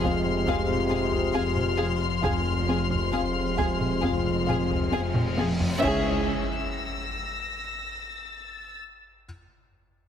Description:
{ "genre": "cinematic, suspense film score", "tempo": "69 BPM", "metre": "4/4", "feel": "straight", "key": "unclear", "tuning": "A4 = 440 Hz", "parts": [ { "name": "dark chamber violin section", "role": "melody", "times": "0.0-6.3 s", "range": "E5 to F5", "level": "-34 LUFS", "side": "left 3 dB", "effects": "none" }, { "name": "warm chamber violin section", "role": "second line", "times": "0.0-6.3 s", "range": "Ab4", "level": "-34 LUFS", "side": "equal", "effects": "none" }, { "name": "dark symphonic viola section", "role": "accompaniment", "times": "0.0-6.3 s", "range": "C4 to C#4", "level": "-35 LUFS", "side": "left 1 dB", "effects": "none" }, { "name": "clear trombone section", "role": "sustained chords", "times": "0.0-6.2 s", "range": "G#2 to G#3", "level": "-33 LUFS", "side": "equal", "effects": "none" }, { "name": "dark French horn section", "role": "sustained chords", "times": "0.0-6.2 s", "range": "C4 to F4", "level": "-32 LUFS", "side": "left 3 dB", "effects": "none" }, { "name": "marimba with soft mallets", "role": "riff", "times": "0.0-5.6 s", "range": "F2 to F3", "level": "-34 LUFS", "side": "left 3 dB", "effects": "none" }, { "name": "dark chamber cello section", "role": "bass", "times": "0.0-6.3 s", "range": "C#2 to F2", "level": "-33 LUFS", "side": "right 5 dB", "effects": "none" }, { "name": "warm chamber double bass section", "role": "bass", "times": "0.0-6.3 s", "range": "F1 to C#2", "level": "-34 LUFS", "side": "right 3 dB", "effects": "none" }, { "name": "sub bass with octave", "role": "drone", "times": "0.0-6.3 s", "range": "F1 to C#2", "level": "-36 LUFS", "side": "left 1 dB", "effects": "none" }, { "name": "taiko ensemble", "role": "drums", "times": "0.0-6.0 s", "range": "none", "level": "-31 LUFS", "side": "equal", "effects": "none" }, { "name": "felt-muted upright piano", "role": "texture", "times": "0.0-5.8 s", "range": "A#6", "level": "-53 LUFS", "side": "left 2 dB", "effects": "none" }, { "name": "warm chamber violin section", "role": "texture", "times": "0.0-8.8 s", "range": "C6 to A#6", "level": "-32 LUFS", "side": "left 6 dB", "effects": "none" }, { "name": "cymbal swell, clash cymbals and concert bass drum", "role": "percussion", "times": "2.2-7.5 s", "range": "none", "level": "-38 LUFS", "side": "equal", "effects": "none" }, { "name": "reverse cymbal and impact", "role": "sound effects", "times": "5.1-9.2 s", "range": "none", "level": "-38 LUFS", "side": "equal", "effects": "none" } ], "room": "moderate concert hall reverb, RT60 2.1 s", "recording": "heavily compressed radio sound, multiband compression", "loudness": "-24 LUFS", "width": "side -8 dB against mid", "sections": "0.0-5.8 A section; 5.8-9.2 B section", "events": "drum fill 4.9-5.8; reverse cymbal 5.1-5.8; band accent 5.8-6.7; impact 5.8-9.2", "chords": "0.0 Fm; 5.8 C#m", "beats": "0.47 1.34 | 2.23 3.14 4.04 4.93 | 5.81 6.67 7.53 8.38" }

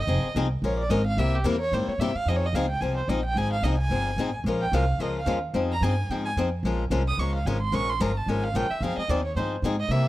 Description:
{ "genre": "acoustic string swing (jazz manouche)", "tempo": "220 BPM", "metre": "4/4", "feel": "swing 58% on 8ths", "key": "F minor", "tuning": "A4 = 439 Hz", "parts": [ { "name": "dark violin", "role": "melody", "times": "0.0-10.1 s", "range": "G4 to Eb6", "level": "-30 LUFS", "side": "right 2 dB", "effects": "none" }, { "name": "upright bass", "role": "bass", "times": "0.0-10.1 s", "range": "F1 to C3", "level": "-26 LUFS", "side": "right 1 dB", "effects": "none" }, { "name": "picked swing-style acoustic guitar", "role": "accompaniment", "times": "0.1-10.1 s", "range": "C3 to Bb4", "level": "-28 LUFS", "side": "left 4 dB", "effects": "none" } ], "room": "studio ambience", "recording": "dry, close 1970s-style studio recording", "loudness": "-23 LUFS", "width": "side -16 dB against mid", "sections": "0.0-2.3 A section; 2.3-10.1 A section", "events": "violin solo 0.0-10.1", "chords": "0.1 Fm7; 0.6 Bbm7; 1.2 C7; 2.3 Fm7; 4.5 Bbm7; 5.5 Fm7; 6.6 Bbm7; 8.8 Fm7", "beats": "| 0.08 0.35 0.63 0.90 | 1.17 1.45 1.72 1.99 | 2.26 2.54 2.81 3.08 | 3.36 3.63 3.90 4.18 | 4.45 4.72 5.00 5.27 | 5.54 5.82 6.09 6.36 | 6.64 6.91 7.18 7.46 | 7.73 8.00 8.27 8.55 | 8.82 9.09 9.36 9.63 | 9.91" }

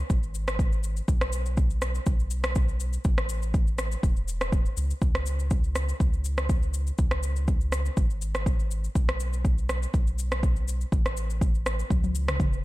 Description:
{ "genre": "afro house", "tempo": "122 BPM", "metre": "4/4", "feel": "swing 53% on 16ths", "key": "C# minor", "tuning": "A4 = 441 Hz", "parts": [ { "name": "round analog bass", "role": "bass", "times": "0.0-12.6 s", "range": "E1 to C#2", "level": "-29 LUFS", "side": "equal", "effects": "sidechain pumping" }, { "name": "afro-pop drum kit", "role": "drums", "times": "0.1-12.6 s", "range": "cabasa, rim click, toms", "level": "-32 LUFS", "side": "equal", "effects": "studio ambience" }, { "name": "electronic kick drum", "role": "drums", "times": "0.1-12.5 s", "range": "none", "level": "-24 LUFS", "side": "equal", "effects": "studio ambience" } ], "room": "digital ambience", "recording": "dark, warm production", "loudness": "-24 LUFS", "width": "side -18 dB against mid", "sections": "0.0-12.6 A section", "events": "drum fill 11.9-12.6", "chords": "none", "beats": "0.10 0.59 | 1.08 1.58 2.07 2.56 | 3.05 3.54 4.04 4.53 | 5.02 5.51 6.00 6.49 | 6.99 7.48 7.97 8.46 | 8.95 9.45 9.94 10.43 | 10.92 11.41 11.90 12.40" }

